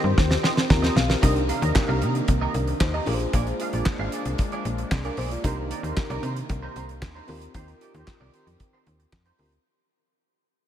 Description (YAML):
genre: early-eighties boogie funk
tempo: 114 BPM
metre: 4/4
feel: straight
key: C minor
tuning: A4 = 437 Hz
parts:
  - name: fat analog lead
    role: melody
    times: 0.0-0.7 s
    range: C5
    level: -36 LUFS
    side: left 2 dB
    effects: none
  - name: FM electric piano with tremolo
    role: accompaniment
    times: 0.0-9.7 s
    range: C4 to Bb5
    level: -31 LUFS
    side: left 2 dB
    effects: none
  - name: warm analog pad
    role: sustained chords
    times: 0.0-9.6 s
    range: C3 to G4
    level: -33 LUFS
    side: equal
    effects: chorus
  - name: clean electric guitar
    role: riff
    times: 0.0-9.6 s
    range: Eb4 to F5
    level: -33 LUFS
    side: right 4 dB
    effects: analog chorus
  - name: slap-like FM bass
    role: bass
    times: 0.0-9.6 s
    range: Ab1 to C3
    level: -27 LUFS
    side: equal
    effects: none
  - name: damped 70s drum kit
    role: drums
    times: 0.2-9.6 s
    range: handclaps, hi-hat, kick drum, snare drum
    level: -24 LUFS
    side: equal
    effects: none
room: light reverb, studio reverb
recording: none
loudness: -22 LUFS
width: side -10 dB against mid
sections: 0.0-1.2 A section; 1.2-9.7 B section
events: drum fill 0.0-1.2; FM electric piano fill 0.4-1.2; fade-out 1.2-9.7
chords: 0.0 Eb6; 1.2 Cm7; 3.1 Bb7; 5.4 Cm7